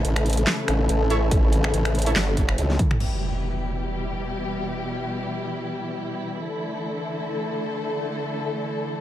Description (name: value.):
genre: heavy wobble dubstep.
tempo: 142 BPM.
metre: 4/4.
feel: swing 55% on 16ths, half-time.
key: E dorian.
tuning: A4 = 440 Hz.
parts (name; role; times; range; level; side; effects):
warm symphonic string section; sustained chords; 0.0-9.0 s; B2 to A4; -27 LUFS; left 1 dB; sidechain pumping, low-pass filter.
formant-sweep wobble bass; bass; 0.0-2.8 s; G1 to C#2; -22 LUFS; equal; chorus, overdrive.
dubstep drum kit; drums; 0.0-3.1 s; crash cymbal, finger snaps, handclaps, hi-hat, snare drum, toms; -26 LUFS; equal; none.
orchestra-hit-like synth stab; stabs; 1.1-2.1 s; E4 to C#5; -31 LUFS; right 2 dB; built-in reverb, tape echo.
electronic kick drum; drums; 1.3-2.9 s; none; -21 LUFS; equal; none.
impact; sound effects; 3.0-4.7 s; none; -30 LUFS; equal; none.
room: light reverb.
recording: none.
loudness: -22 LUFS.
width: side -12 dB against mid.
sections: 0.0-3.0 A section; 3.0-9.0 B section.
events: drop 0.0-3.0; drum fill 2.7-3.0; impact 3.0-4.7.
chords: 0.0 A; 3.0 Em; 6.4 Asus4.